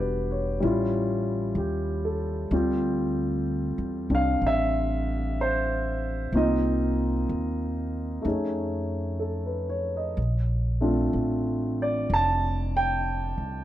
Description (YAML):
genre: jazz ballad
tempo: 63 BPM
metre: 4/4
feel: swing 66% on 8ths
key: unclear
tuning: A4 = 441 Hz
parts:
  - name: warm concert grand piano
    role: accompaniment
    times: 0.0-13.6 s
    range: G3 to A5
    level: -26 LUFS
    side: equal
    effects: none
  - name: upright bass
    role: bass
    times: 0.0-13.6 s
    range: E1 to F2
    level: -29 LUFS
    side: equal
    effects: none
room: studio reverb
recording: dry, close 1970s-style studio recording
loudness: -24 LUFS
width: side -13 dB against mid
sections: 0.0-13.6 A section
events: none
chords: 0.0 Em9; 0.6 A7b13; 2.5 Dm11; 6.3 Cm7; 8.2 F7alt; 10.2 Bbmaj9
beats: 0.62 1.57 | 2.52 3.47 4.42 5.38 | 6.33 7.29 8.25 9.21 | 10.17 11.13 12.09 13.04